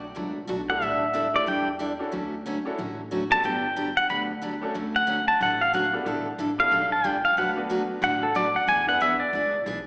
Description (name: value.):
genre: country, western swing.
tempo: 183 BPM.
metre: 4/4.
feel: swing 63% on 8ths.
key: D major.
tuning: A4 = 440 Hz.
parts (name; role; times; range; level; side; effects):
upright bass; bass; 0.0-9.9 s; G1 to E2; -38 LUFS; equal; none.
picked steel-string acoustic guitar; accompaniment; 0.1-9.8 s; B2 to B4; -30 LUFS; equal; slapback echo.
pedal steel guitar; melody; 0.7-9.6 s; A4 to B5; -22 LUFS; equal; slapback echo.
bright upright piano; accompaniment; 0.7-9.3 s; A3 to B4; -32 LUFS; equal; slapback echo.
room: moderate plate reverb, RT60 2.9 s.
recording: live gig heard through the venue's PA, recital hall reverb, small speaker sound.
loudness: -22 LUFS.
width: side -30 dB against mid.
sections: 0.0-9.9 A section.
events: pedal steel guitar solo 0.0-9.9.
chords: 0.0 Bm7; 0.8 A7sus4; 2.1 Dmaj7; 3.4 Gmaj9; 4.7 Dmaj7; 6.1 A9sus4; 7.4 D6; 8.7 E7.